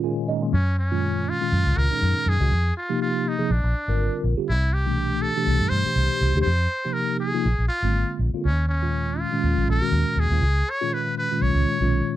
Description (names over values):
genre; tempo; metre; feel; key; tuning
jazz; 121 BPM; 4/4; swing 54% on 16ths; Gb lydian; A4 = 440 Hz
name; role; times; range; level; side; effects
mellow tine electric piano; accompaniment; 0.0-12.2 s; A#2 to G#5; -25 LUFS; equal; medium stereo tremolo, phaser
trumpet with metal mute; melody; 0.5-12.2 s; Db4 to Db5; -26 LUFS; equal; slapback echo
vintage muted fingered electric bass; bass; 0.5-12.0 s; Ab1 to G2; -22 LUFS; equal; none
room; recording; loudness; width
little or no reverb; dry, close 1970s-style studio recording; -20 LUFS; side -13 dB against mid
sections
0.5-12.2 A section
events
tine electric piano fill 0.0-0.5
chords
0.0 C#; 0.5 Gbmaj7; 2.5 Fm7; 3.5 Bb9; 4.5 C69; 6.5 Fsus2; 7.5 Bb7; 8.4 Ebm9; 10.4 Db7